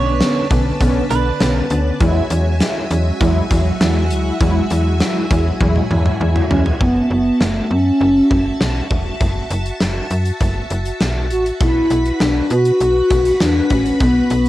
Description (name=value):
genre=synth-pop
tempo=100 BPM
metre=4/4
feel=straight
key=B dorian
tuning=A4 = 439 Hz
part: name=direct-recorded clean electric guitar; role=second line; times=0.0-1.5 s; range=B4 to C#5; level=-24 LUFS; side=right 8 dB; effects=tape echo
part: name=mellow synth brass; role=accompaniment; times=0.0-6.7 s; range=D3 to E4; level=-20 LUFS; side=equal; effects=chorus, phaser
part: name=string machine, violins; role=sustained chords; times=0.0-14.5 s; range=D4 to B5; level=-26 LUFS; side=equal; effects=ensemble chorus
part: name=slap-like FM bass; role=bass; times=0.0-14.5 s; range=E1 to B2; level=-18 LUFS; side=equal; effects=none
part: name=gated 80s drum kit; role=drums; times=0.2-14.5 s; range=hi-hat, kick drum, snare drum, toms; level=-19 LUFS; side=equal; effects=cassette tape
part: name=hollow clarinet-like synth lead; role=melody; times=6.5-14.5 s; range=A3 to F#4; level=-15 LUFS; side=equal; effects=chorus, cassette tape, tape echo, plate reverb
room=moderate booth ambience, RT60 0.2 s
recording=home recording on cassette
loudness=-14 LUFS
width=side -15 dB against mid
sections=0.0-6.8 A section; 6.8-14.5 B section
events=drum fill 5.6-6.8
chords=0.0 Bmadd9; 2.0 Eadd9; 6.8 B5